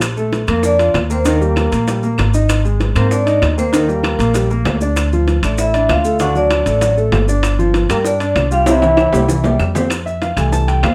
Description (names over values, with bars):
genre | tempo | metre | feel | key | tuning
Afro-Cuban jazz | 194 BPM | 4/4 | straight | F major | A4 = 436 Hz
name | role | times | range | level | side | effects
upright bass | bass | 0.0-10.9 s | G1 to Ab2 | -20 LUFS | equal | none
bongos | percussion | 0.0-10.9 s | none | -26 LUFS | equal | none
claves | percussion | 0.0-10.9 s | none | -31 LUFS | equal | none
maracas | percussion | 0.0-10.9 s | none | -35 LUFS | equal | none
timbales | percussion | 0.0-10.9 s | none | -25 LUFS | equal | none
warm concert grand piano | accompaniment | 0.2-10.9 s | C3 to A5 | -21 LUFS | equal | none
vibraphone with medium hard mallets | melody | 0.5-9.6 s | Bb4 to F#5 | -20 LUFS | equal | plate reverb
bright trombone | second line | 0.5-9.6 s | Bb3 to F#4 | -25 LUFS | equal | none
room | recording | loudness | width
moderate studio reverb, RT60 0.6 s | none | -15 LUFS | mono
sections
0.0-9.9 A section; 9.9-10.9 B section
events
drum fill 8.7-9.9; grand piano solo 9.9-10.9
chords
0.0 Bbmaj7; 1.3 Eb; 2.5 Ab; 3.7 Eb; 5.0 Dmadd9; 6.2 D; 7.4 G5; 8.7 C; 9.9 Fmaj7